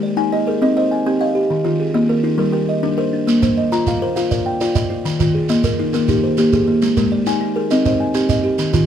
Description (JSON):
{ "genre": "southern african traditional, mbira-style interlocking cycle", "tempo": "135 BPM (dotted quarters)", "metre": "12/8", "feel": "straight", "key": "unclear", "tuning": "A4 = 442 Hz", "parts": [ { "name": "buzzing kalimba", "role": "arpeggios", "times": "0.0-8.9 s", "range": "Eb3 to Bb5", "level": "-18 LUFS", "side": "left 3 dB", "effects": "none" }, { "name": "buzzing kalimba", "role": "arpeggios", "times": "0.0-8.9 s", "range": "Eb3 to Ab5", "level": "-19 LUFS", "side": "right 2 dB", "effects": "none" }, { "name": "shekere", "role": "percussion", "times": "3.3-8.9 s", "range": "none", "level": "-22 LUFS", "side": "right 4 dB", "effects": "none" } ], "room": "moderate booth ambience, RT60 0.2 s", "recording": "none", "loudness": "-15 LUFS", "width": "side -9 dB against mid", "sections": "0.0-8.9 A section", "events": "none", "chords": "0.0 Ab5; 0.6 Cm; 1.5 Eb; 2.4 Gm; 3.3 Bb; 5.1 Eb; 6.8 Ab5; 7.7 Cm", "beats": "0.17 0.61 1.06 | 1.50 1.95 2.39 2.83 | 3.28 3.72 4.17 4.61 | 5.05 5.49 5.94 6.38 | 6.82 7.26 7.70 8.14 | 8.59" }